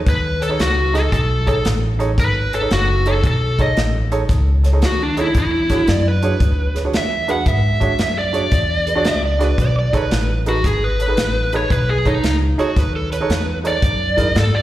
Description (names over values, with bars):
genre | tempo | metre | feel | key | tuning
electric blues shuffle | 113 BPM | 4/4 | swing 66% on 8ths | unclear | A4 = 440 Hz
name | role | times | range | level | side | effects
upright bass | bass | 0.0-14.6 s | F#1 to G#2 | -19 LUFS | equal | none
smooth overdriven lead guitar | melody | 0.1-14.6 s | D4 to F#5 | -20 LUFS | equal | slapback echo, analog delay
natural country drum kit | drums | 0.1-14.5 s | hi-hat, kick drum, snare drum | -21 LUFS | equal | none
warm upright piano | accompaniment | 0.4-14.3 s | D4 to D#5 | -24 LUFS | right 4 dB | slapback echo
overdriven slide guitar | second line | 5.9-13.6 s | F#4 to E5 | -25 LUFS | right 3 dB | slapback echo
room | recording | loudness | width
light reverb | live gig heard through the venue's PA, recital hall reverb | -15 LUFS | side -14 dB against mid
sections
0.0-14.6 A section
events
none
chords
0.0 B13; 5.3 E13; 9.6 B13; 13.8 F#sus2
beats
0.07 0.59 | 1.12 1.65 2.18 2.71 | 3.23 3.76 4.29 4.82 | 5.35 5.88 6.40 6.93 | 7.46 7.99 8.52 9.05 | 9.58 10.11 10.64 11.17 | 11.70 12.23 12.76 13.29 | 13.82 14.35